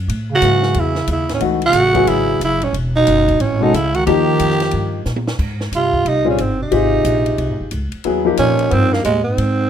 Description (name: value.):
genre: modal jazz.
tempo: 181 BPM.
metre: 4/4.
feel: swing 64% on 8ths.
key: Ab major from 5.4 s.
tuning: A4 = 440 Hz.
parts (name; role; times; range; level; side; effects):
upright bass; bass; 0.0-9.7 s; E1 to A#2; -21 LUFS; equal; none.
compact cocktail drum kit; drums; 0.1-9.5 s; crash cymbal, hi-hat, kick drum, ride cymbal, snare drum, toms; -28 LUFS; equal; none.
growling tenor saxophone; melody; 0.3-9.7 s; Ab3 to G4; -16 LUFS; right 2 dB; none.
breathy bass clarinet; second line; 0.3-9.7 s; Eb2 to D#3; -21 LUFS; right 3 dB; none.
clear grand piano; accompaniment; 0.4-9.0 s; E3 to A4; -18 LUFS; left 6 dB; none.
room: moderate studio reverb, RT60 0.8 s.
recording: minimal, uncompressed stereo recording.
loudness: -14 LUFS.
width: side -9 dB against mid.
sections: 0.0-5.4 A section; 5.4-9.7 B section.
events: drum fill 5.1-5.4.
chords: 0.1 Amaj9; 4.1 D#add9; 5.4 Abmaj9.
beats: | 0.10 0.42 0.76 1.09 | 1.42 1.75 2.08 2.41 | 2.74 3.07 3.40 3.73 | 4.06 4.39 4.72 5.06 | 5.39 5.72 6.05 6.38 | 6.72 7.05 7.38 7.71 | 8.04 8.38 8.71 9.04 | 9.37.